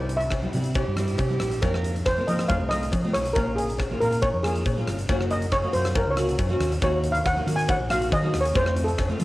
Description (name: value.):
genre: calypso.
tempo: 138 BPM.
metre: 4/4.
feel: straight.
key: Bb minor.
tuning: A4 = 435 Hz.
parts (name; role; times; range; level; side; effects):
steel pan; melody; 0.0-9.2 s; Ab4 to Ab5; -26 LUFS; equal; cassette tape, analog delay.
nylon-string guitar; accompaniment; 0.0-9.2 s; G3 to Gb4; -30 LUFS; equal; double-tracked left and right, cassette tape.
hollow-body short-scale fingered electric bass; bass; 0.0-9.2 s; Gb1 to F3; -27 LUFS; equal; none.
huge arena drum kit; drums; 0.1-9.2 s; hi-hat, kick drum, rim click; -28 LUFS; equal; cassette tape.
cowbell; percussion; 0.3-9.1 s; none; -34 LUFS; left 6 dB; none.
clear alto saxophone; second line; 0.8-2.0 s; G4 to Bb4; -31 LUFS; right 6 dB; cassette tape.
room: light reverb, studio ambience.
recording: home recording on cassette.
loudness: -22 LUFS.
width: side -17 dB against mid.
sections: 0.0-9.2 A section.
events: steel pan solo 0.0-9.2.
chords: 0.0 C; 1.6 Fsus4; 2.5 F; 3.4 Bbm7; 5.1 Gb; 6.8 Ebm; 8.6 F.